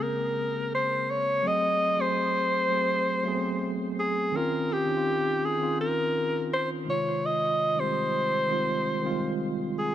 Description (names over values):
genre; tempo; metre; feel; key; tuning
R&B; 83 BPM; 4/4; straight; F minor; A4 = 440 Hz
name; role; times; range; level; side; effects
warm alto saxophone; melody; 0.0-9.9 s; G4 to Eb5; -26 LUFS; equal; none
mellow tine electric piano; accompaniment; 0.0-9.9 s; C3 to Ab4; -30 LUFS; right 1 dB; medium stereo tremolo
room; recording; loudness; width
moderate lush hall reverb, RT60 3.0 s; none; -24 LUFS; side -11 dB against mid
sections
0.0-9.9 A section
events
none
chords
0.0 Bbm9; 1.5 Ab7b9; 4.3 Dbmaj9; 6.9 Fm7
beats
0.01 0.73 | 1.45 2.17 2.90 3.62 | 4.34 5.07 5.79 6.51 | 7.24 7.96 8.68 9.40